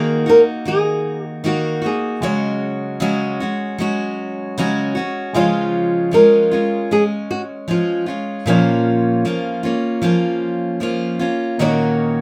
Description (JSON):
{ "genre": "acoustic pop", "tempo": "77 BPM", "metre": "4/4", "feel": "swing 55% on 16ths", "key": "unclear", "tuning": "A4 = 439 Hz", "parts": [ { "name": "flamenco guitar", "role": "melody", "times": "0.0-12.2 s", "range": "F4 to Bb4", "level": "-19 LUFS", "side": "equal", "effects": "none" }, { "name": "picked steel-string acoustic guitar", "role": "accompaniment", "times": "0.0-12.2 s", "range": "Bb2 to Gb4", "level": "-21 LUFS", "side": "equal", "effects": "none" }, { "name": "warm concert grand piano", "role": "accompaniment", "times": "0.0-12.2 s", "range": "Ab3 to F5", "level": "-31 LUFS", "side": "equal", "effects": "none" } ], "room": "light reverb", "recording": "none", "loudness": "-18 LUFS", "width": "mono", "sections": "0.0-5.4 A section; 5.4-12.2 B section", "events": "none", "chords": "0.0 Ebm; 2.2 Dbsus4; 5.4 Db; 8.5 Bbm; 11.6 Ebm7/Bb", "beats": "0.66 1.45 | 2.23 3.01 3.79 4.57 | 5.35 6.13 6.91 7.69 | 8.47 9.25 10.04 10.82 | 11.60" }